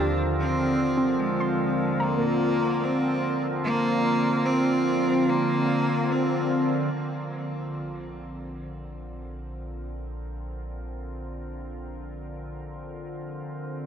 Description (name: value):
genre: ambient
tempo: free time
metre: none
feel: none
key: Bb major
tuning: A4 = 440 Hz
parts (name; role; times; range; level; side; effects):
- clear cello; melody; 0.0-6.7 s; Ab3 to D4; -26 LUFS; equal; diffuse ambient delay
- evolving wavetable pad; sustained chords; 0.0-13.9 s; Eb2 to Bb4; -27 LUFS; equal; chorus, built-in reverb
- soft round pluck; arpeggios; 0.0-5.2 s; Bb3 to C6; -33 LUFS; right 1 dB; none
- round analog bass; bass; 6.9-13.9 s; Bb1; -39 LUFS; equal; none
room: wet cathedral reverb, RT60 6.3 s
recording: none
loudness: -22 LUFS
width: side -8 dB against mid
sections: 0.0-6.9 A section; 6.9-13.9 B section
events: fade-in on ambient pad 6.9-13.9; fade-in on analog synth bass 6.9-13.9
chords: 0.4 F5; 6.9 Bbadd9